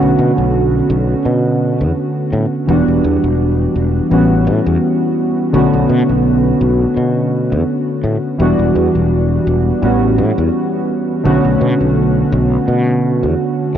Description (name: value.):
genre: vaporwave.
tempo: 84 BPM.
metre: 4/4.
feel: swing 55% on 16ths.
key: B minor.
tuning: A4 = 438 Hz.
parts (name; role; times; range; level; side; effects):
warbly lo-fi synth keys; accompaniment; 0.0-13.8 s; D3 to F#4; -13 LUFS; right 1 dB; lush chorus, tape echo.
sustaining fretless electric bass; bass; 0.0-13.8 s; E1 to B2; -16 LUFS; left 1 dB; tube saturation.
room: light reverb.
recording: cassette tape.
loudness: -12 LUFS.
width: side -9 dB against mid.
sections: 0.0-13.8 A section.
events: none.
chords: 0.0 Bm9; 2.7 Em9; 4.1 A13; 5.5 Bm9; 8.4 Em9; 9.8 A13; 11.3 Bm9.